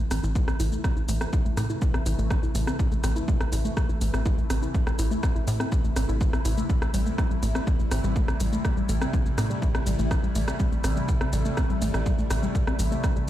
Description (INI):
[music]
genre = melodic techno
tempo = 123 BPM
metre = 4/4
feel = straight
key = A minor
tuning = A4 = 440 Hz
[part]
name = evolving wavetable pad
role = sustained chords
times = 0.1-13.3 s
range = C3 to E4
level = -34 LUFS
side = equal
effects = phaser, built-in reverb, sidechain pumping
[part]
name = warbly dusty pluck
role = arpeggios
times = 0.0-13.2 s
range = G3 to E4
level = -31 LUFS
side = left 1 dB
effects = chorus, sidechain pumping, digital delay
[part]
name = tight sequencer bass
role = bass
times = 0.1-13.0 s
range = A1 to A2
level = -26 LUFS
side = equal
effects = sidechain pumping
[part]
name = punchy analog drum machine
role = drums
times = 0.1-13.3 s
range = hi-hat, rim click, shaker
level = -34 LUFS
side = right 1 dB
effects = sidechain pumping on hats, sidechain pumping on cymbals, sidechain pumping on perc
[part]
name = electronic kick drum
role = drums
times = 0.4-13.1 s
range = none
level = -25 LUFS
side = equal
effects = none
[sound]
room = light reverb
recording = played on a big sound system in a bare room, large studio reverb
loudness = -23 LUFS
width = side -13 dB against mid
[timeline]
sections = 0.0-13.3 A section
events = none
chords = 0.0 Am; 6.7 C6/A